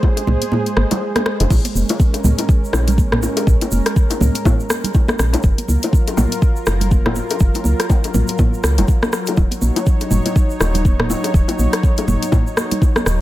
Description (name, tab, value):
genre	afro house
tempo	122 BPM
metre	4/4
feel	swing 58% on 16ths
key	Bb minor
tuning	A4 = 440 Hz
part	warm analog pad	sustained chords	0.0-13.2 s	Gb3 to Db5	-24 LUFS	equal	chorus, sidechain pumping
part	electronic kick drum	drums	0.0-12.9 s	none	-14 LUFS	equal	none
part	bongos	percussion	0.0-13.0 s	none	-25 LUFS	left 4 dB	none
part	congas	percussion	0.0-13.2 s	none	-22 LUFS	right 2 dB	none
part	afro-pop drum kit	drums	0.2-13.2 s	crash cymbal, hi-hat, rim click, toms	-22 LUFS	equal	none
part	woody FM bass	bass	0.3-13.2 s	Eb1 to Db2	-17 LUFS	equal	sidechain pumping
part	egg shaker	percussion	1.5-13.2 s	none	-33 LUFS	right 3 dB	none
room	digital ambience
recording	none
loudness	-14 LUFS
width	side -15 dB against mid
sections	0.0-13.2 A section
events	kick drops out 0.5-1.5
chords	0.0 Ab; 1.5 Bbm7; 5.4 Gbmaj7; 9.4 Ebm7